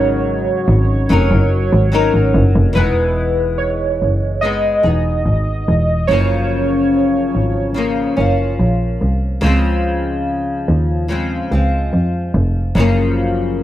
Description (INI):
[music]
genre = indie pop, bedroom pop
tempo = 72 BPM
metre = 4/4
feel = straight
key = unclear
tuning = A4 = 440 Hz
[part]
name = warbly lo-fi synth keys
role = melody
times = 0.0-9.0 s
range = B4 to D#5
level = -20 LUFS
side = right 3 dB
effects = wide subtle chorus, analog delay
[part]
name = flamenco guitar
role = accompaniment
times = 0.0-13.6 s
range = Gb2 to Bb4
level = -18 LUFS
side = left 3 dB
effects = analog chorus, warbly pitch drift
[part]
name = clear double bass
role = bass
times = 0.0-13.6 s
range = E1 to F2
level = -16 LUFS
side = equal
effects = none
[sound]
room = light reverb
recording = none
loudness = -13 LUFS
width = side -13 dB against mid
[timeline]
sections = 0.0-2.8 A section; 2.8-13.6 B section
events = none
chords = 0.0 Ab9sus4; 2.8 Emaj7; 6.1 Gbmaj7; 9.4 Dbmaj7; 12.8 Gbmaj7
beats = 0.26 1.09 1.93 | 2.76 3.60 4.43 5.26 | 6.10 6.93 7.76 8.60 | 9.43 10.26 11.10 11.93 | 12.76 13.60